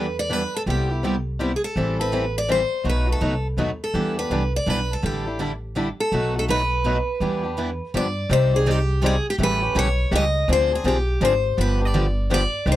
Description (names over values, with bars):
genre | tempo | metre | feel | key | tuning
acoustic string swing (jazz manouche) | 165 BPM | 3/4 | swing 63% on 8ths | E minor, C harmonic minor from 8.3 s | A4 = 439 Hz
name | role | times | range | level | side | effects
picked steel-string acoustic guitar | melody | 0.0-12.8 s | G4 to Eb5 | -24 LUFS | left 1 dB | none
picked steel-string acoustic guitar | accompaniment | 0.0-12.8 s | B2 to D5 | -28 LUFS | right 4 dB | none
picked swing-style acoustic guitar | accompaniment | 0.0-12.8 s | B2 to D5 | -26 LUFS | left 3 dB | none
upright bass | bass | 0.0-12.8 s | G1 to G2 | -24 LUFS | equal | none
room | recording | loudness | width
little or no reverb | dry, close 1970s-style studio recording | -20 LUFS | side -14 dB against mid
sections
0.0-8.3 A section; 8.3-12.8 B section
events
none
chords
0.0 Em7; 0.7 Cmaj7; 1.8 Am7; 2.9 B7; 3.9 Em7; 5.0 A7sus4; 6.1 B7; 7.2 Em7; 7.9 G7; 8.3 Cmadd9; 9.4 A7; 10.5 Dm7b5; 11.6 G7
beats
0.30 | 0.67 1.03 1.40 | 1.76 2.12 2.49 | 2.85 3.21 3.58 | 3.94 4.30 4.67 | 5.03 5.39 5.76 | 6.12 6.49 6.85 | 7.21 7.58 7.94 | 8.30 8.67 9.03 | 9.39 9.76 10.12 | 10.48 10.84 11.21 | 11.57 11.93 12.30 | 12.66